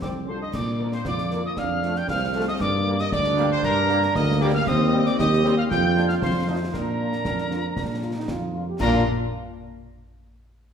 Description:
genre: military-style march for wind band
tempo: 116 BPM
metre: 2/4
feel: straight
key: Bb major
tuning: A4 = 441 Hz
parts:
  - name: dark trumpet section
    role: melody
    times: 0.0-9.0 s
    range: Bb4 to G5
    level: -29 LUFS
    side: right 2 dB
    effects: none
  - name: piccolo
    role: second line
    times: 0.0-9.1 s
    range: Bb5 to G6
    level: -29 LUFS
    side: left 3 dB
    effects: none
  - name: warm euphonium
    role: second line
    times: 0.0-8.6 s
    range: C3 to G4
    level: -28 LUFS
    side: right 3 dB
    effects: none
  - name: warm trombone section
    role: sustained chords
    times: 0.0-9.0 s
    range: F3 to G4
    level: -35 LUFS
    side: right 2 dB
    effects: none
  - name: dark tuba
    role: bass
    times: 0.0-9.0 s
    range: C2 to Bb2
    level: -24 LUFS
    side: equal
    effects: none
  - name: concert snare drum, concert bass drum and clash cymbals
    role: drums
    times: 0.0-9.1 s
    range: none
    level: -32 LUFS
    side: left 1 dB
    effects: none
  - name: warm French horn section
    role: accompaniment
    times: 0.3-9.0 s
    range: G3 to Bb4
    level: -32 LUFS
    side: left 4 dB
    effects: none
room: wet scoring stage reverb, RT60 1.6 s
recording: minimal, uncompressed stereo recording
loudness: -20 LUFS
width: side -7 dB against mid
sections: 0.5-8.8 A section; 8.8-9.8 B section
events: none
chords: 0.0 F; 0.5 Bb; 1.6 F; 2.6 Gm; 4.7 Cm/Eb; 5.7 Bb/F; 6.2 F7; 6.7 Bb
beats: 0.03 | 0.54 1.06 | 1.58 2.09 | 2.61 3.13 | 3.64 4.16 | 4.68 5.19 | 5.71 6.23 | 6.75 7.26 | 7.78 8.30 | 8.81

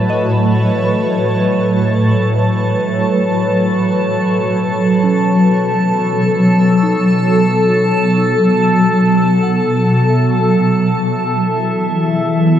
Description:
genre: ambient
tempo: free time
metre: none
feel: none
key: unclear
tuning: A4 = 440 Hz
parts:
  - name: shimmering ambient pad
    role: sustained chords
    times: 0.0-12.6 s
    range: A2 to E6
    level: -12 LUFS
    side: equal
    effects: chorus, built-in reverb, phaser
  - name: soft synth bell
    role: arpeggios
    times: 0.0-11.2 s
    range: C#4 to F#5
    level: -30 LUFS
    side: equal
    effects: chorus, tape echo
  - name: organ-like drone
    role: drone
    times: 0.0-12.6 s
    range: none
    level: barely audible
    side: none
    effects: none
  - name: drifting glass-harmonics texture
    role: texture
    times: 0.0-12.6 s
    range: E4 to A5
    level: -19 LUFS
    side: left 1 dB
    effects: chorus, built-in reverb
room: wet huge ambient reverb, RT60 8.9 s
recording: dark, warm production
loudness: -12 LUFS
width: side -10 dB against mid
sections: 0.0-11.2 A section; 11.2-12.6 B section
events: fade-out on synth bell 0.0-11.2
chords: 0.0 A69; 4.0 B7sus4; 11.2 E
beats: free time

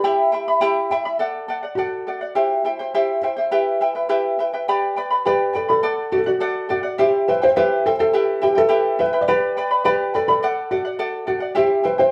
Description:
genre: andean folk, Andean ensemble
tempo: 104 BPM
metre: 2/4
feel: straight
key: unclear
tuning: A4 = 445 Hz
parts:
  - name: felt-muted upright piano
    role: melody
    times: 0.0-3.2, 5.3-12.1 s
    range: F#4 to D5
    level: -22 LUFS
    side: equal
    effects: none
  - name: charango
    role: accompaniment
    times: 0.0-12.1 s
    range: E4 to B5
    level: -22 LUFS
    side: equal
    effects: none
room: moderate studio reverb, RT60 0.9 s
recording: band playing live in one room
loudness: -20 LUFS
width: mono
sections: 0.0-1.2 A section; 1.2-5.8 B section; 5.8-12.1 C section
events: none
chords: 0.0 Em; 1.2 D; 2.4 C; 3.5 Em; 4.7 G; 5.8 D; 7.0 C; 8.1 Em; 9.3 G; 10.4 D; 11.6 C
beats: | 0.04 0.62 | 1.20 1.78 | 2.36 2.94 | 3.52 4.10 | 4.68 5.25 | 5.83 6.41 | 6.98 7.56 | 8.13 8.70 | 9.28 9.85 | 10.42 10.99 | 11.56

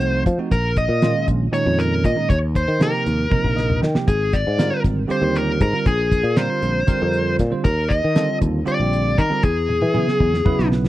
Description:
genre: electric jazz fusion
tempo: 235 BPM (eighths)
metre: 7/8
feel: straight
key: unclear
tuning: A4 = 440 Hz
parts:
  - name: dark smooth lead guitar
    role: melody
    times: 0.0-10.7 s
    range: Ab4 to Eb5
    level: -22 LUFS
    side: left 1 dB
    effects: overdrive
  - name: bell-like tine electric piano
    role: accompaniment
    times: 0.0-10.9 s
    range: Bb2 to G5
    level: -23 LUFS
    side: right 4 dB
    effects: analog chorus
  - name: sustaining fretless electric bass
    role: bass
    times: 0.0-10.9 s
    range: Ab1 to F3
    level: -21 LUFS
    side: equal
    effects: none
  - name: damped 70s drum kit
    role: drums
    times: 0.0-10.9 s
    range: hi-hat, kick drum, snare drum, toms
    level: -20 LUFS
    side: equal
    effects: none
room: little or no reverb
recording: dry, close 1970s-style studio recording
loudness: -17 LUFS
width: side -15 dB against mid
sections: 0.0-10.9 A section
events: drum fill 3.3-4.1, 9.7-10.9; tine electric piano fill 3.3-4.1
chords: 0.0 F7b9; 0.5 Bbm7; 2.3 Eb69; 4.1 Abmaj7; 5.9 Bb9; 7.7 Ebmaj9#11; 9.4 Eadd9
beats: 0.00 0.26 | 0.51 0.77 1.02 1.28 1.53 1.79 2.04 | 2.30 2.55 2.81 3.06 3.32 3.57 3.83 | 4.08 4.34 4.59 4.85 5.10 5.36 5.61 | 5.87 6.12 6.38 6.63 6.89 7.14 7.40 | 7.65 7.91 8.16 8.42 8.67 8.93 9.18 | 9.44 9.69 9.95 10.20 10.46 10.71

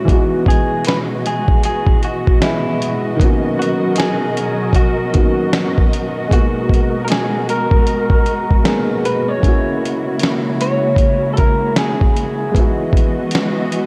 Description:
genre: lo-fi hip hop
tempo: 77 BPM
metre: 4/4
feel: swing 61% on 16ths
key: unclear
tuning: A4 = 440 Hz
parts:
  - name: electric guitar through a small old amp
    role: melody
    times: 0.0-12.6 s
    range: E4 to C#5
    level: -24 LUFS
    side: equal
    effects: low-pass filter
  - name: warm upright piano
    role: accompaniment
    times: 0.0-13.9 s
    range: D#3 to D#5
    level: -24 LUFS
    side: equal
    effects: low-pass filter
  - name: dark studio string section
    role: sustained chords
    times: 0.0-13.9 s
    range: B2 to D#5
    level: -23 LUFS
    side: equal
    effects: low-pass filter
  - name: dusty soul sampler-style drum kit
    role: drums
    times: 0.1-13.9 s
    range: finger snaps, hi-hat, kick drum, snare drum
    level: -19 LUFS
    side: equal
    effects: none
room: moderate cathedral reverb, RT60 6.7 s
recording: dreamy mix soaked in reverb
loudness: -16 LUFS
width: mono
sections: 0.0-13.9 A section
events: none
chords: 0.1 Emaj9; 3.2 Bmaj7; 6.3 G#m9; 9.4 F#9; 12.5 Emaj9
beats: | 0.08 0.86 1.64 2.42 | 3.20 3.98 4.76 5.54 | 6.31 7.09 7.87 8.65 | 9.43 10.21 10.99 11.77 | 12.55 13.33

